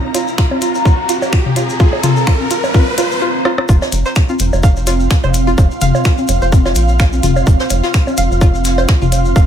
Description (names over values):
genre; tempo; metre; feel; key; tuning
minimal techno; 127 BPM; 4/4; swing 56% on 16ths; unclear; A4 = 438 Hz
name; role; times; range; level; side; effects
riser; sound effects; 0.0-3.2 s; none; -20 LUFS; equal; none
ethereal airy pad; texture; 0.0-9.5 s; C4 to C6; -20 LUFS; right 2 dB; ensemble chorus, built-in reverb, sidechain pumping
string-like resonator pluck; riff; 0.1-9.4 s; F4 to F5; -21 LUFS; right 1 dB; chorus, sidechain pumping, ping-pong delay
minimal click drum kit; drums; 0.1-9.2 s; finger snaps, hi-hat, rim click; -20 LUFS; left 2 dB; studio ambience
electronic bongos, congas and toms; percussion; 0.1-9.2 s; none; -19 LUFS; left 3 dB; studio ambience, ping-pong delay
shekere; percussion; 0.1-9.5 s; none; -28 LUFS; left 3 dB; none
electronic kick drum; drums; 0.4-9.5 s; none; -12 LUFS; equal; studio ambience
rubbery square bass; bass; 3.7-9.5 s; F1 to Bb1; -15 LUFS; equal; sidechain pumping
jazz brush drum kit; drums; 3.7-9.5 s; hi-hat, shaker, snare drum; -27 LUFS; left 1 dB; high-pass filter on hats, studio ambience, high-pass filter on snare, high-pass filter on perc, high-pass filter on room
flickering grainy texture; texture; 4.5-9.5 s; F5; -28 LUFS; right 1 dB; built-in reverb, sidechain pumping
room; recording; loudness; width
light reverb; none; -11 LUFS; side -9 dB against mid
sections
0.0-3.7 A section; 3.7-9.5 B section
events
build-up 0.0-3.7; riser 0.0-3.2; break 3.2-3.7; drum fill 3.5; drop 3.7-9.5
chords
0.0 F5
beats
0.38 0.85 1.33 | 1.80 2.27 2.75 3.22 | 3.69 4.16 4.63 5.11 | 5.58 6.05 6.52 7.00 | 7.47 7.94 8.41 8.89 | 9.36